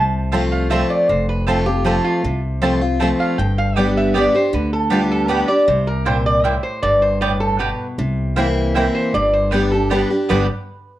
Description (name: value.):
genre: bluegrass.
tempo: 156 BPM.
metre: 3/4.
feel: straight.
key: G mixolydian.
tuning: A4 = 440 Hz.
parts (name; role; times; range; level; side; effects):
lap resonator guitar; melody; 0.0-10.5 s; F4 to A5; -20 LUFS; right 1 dB; none.
picked steel-string acoustic guitar; accompaniment; 0.0-10.5 s; F2 to G4; -20 LUFS; left 1 dB; none.
upright bass; bass; 0.0-10.5 s; F1 to D2; -22 LUFS; equal; none.
mandolin; stabs; 0.3-10.5 s; Bb3 to A5; -23 LUFS; right 3 dB; none.
room: light reverb.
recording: worn, warbling old tape, cassette tape, warbly pitch drift.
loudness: -15 LUFS.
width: side -14 dB against mid.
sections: 0.0-8.0 A section; 8.0-10.3 B section.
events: none.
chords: 0.0 F; 3.4 G; 5.7 C7; 6.8 G; 8.0 C7; 9.1 G.